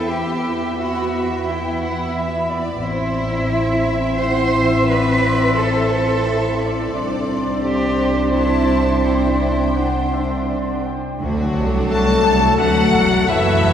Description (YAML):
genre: cinematic, emotional film score for orchestra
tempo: 87 BPM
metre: 3/4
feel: rubato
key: unclear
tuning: A4 = 443 Hz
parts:
  - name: rich studio violin section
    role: melody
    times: 0.0-13.7 s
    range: C5 to A5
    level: -25 LUFS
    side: left 2 dB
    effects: none
  - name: mellow clarinet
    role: second line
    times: 0.0-13.7 s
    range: E4 to G5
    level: -28 LUFS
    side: left 1 dB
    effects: none
  - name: mellow hollow large flute ensemble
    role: second line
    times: 0.0-10.8 s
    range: B5 to C6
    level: -28 LUFS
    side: equal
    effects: none
  - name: rich studio violin section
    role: second line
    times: 0.0-13.7 s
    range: A3 to A5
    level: -28 LUFS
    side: left 1 dB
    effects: none
  - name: dark studio viola section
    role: accompaniment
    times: 0.0-13.7 s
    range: F#3 to E4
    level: -24 LUFS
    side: right 1 dB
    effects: none
  - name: warm French horn section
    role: sustained chords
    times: 0.0-13.7 s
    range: E3 to E4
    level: -23 LUFS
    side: left 2 dB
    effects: none
  - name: rich studio cello section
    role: bass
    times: 0.0-13.7 s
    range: C2 to C5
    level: -24 LUFS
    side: right 2 dB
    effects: none
  - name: rich studio double bass section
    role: bass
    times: 0.0-13.7 s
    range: E1 to E2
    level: -23 LUFS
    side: right 1 dB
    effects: none
  - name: clear oboe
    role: second line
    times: 11.9-13.7 s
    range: F#4 to B4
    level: -27 LUFS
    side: right 1 dB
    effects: none
room: wet cathedral reverb, RT60 5.5 s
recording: heard from further back in the room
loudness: -16 LUFS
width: side -9 dB against mid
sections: 0.0-11.2 A section; 11.2-13.7 B section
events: none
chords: 0.0 Em; 2.8 Am; 6.9 Csus2; 11.2 D